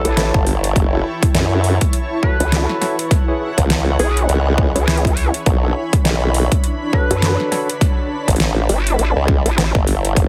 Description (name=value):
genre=glitch hop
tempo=102 BPM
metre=4/4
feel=swing 59% on 16ths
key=unclear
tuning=A4 = 440 Hz
part: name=sync lead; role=melody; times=0.0-7.8 s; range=G#4 to B4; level=-28 LUFS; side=equal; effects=subtle chorus, dub echo
part: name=tine electric piano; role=stabs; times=0.0-7.7 s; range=D4 to C#5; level=-28 LUFS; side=equal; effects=overdrive, sidechain pumping, dub echo
part: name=granular cloud pad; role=texture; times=0.2-10.2 s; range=D4 to B5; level=-28 LUFS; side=equal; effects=built-in reverb, sidechain pumping
part: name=vowel-sweep wobble bass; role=bass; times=0.1-9.7 s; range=G1 to F#2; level=-19 LUFS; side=equal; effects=chorus
part: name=dubstep drum kit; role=drums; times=0.1-10.3 s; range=hi-hat, snare drum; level=-24 LUFS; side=equal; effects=overdrive
part: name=formant-sweep wobble bass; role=bass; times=0.3-10.3 s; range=F#1 to F#2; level=-19 LUFS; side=equal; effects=chorus, overdrive
part: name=electronic kick drum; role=drums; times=0.3-10.3 s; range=none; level=-19 LUFS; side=equal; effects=overdrive
room=digital ambience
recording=heavily compressed radio sound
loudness=-17 LUFS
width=mono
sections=0.0-10.3 A section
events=none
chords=0.0 A7; 0.8 F#m7; 3.1 C#m7; 5.5 Bm9; 7.8 A7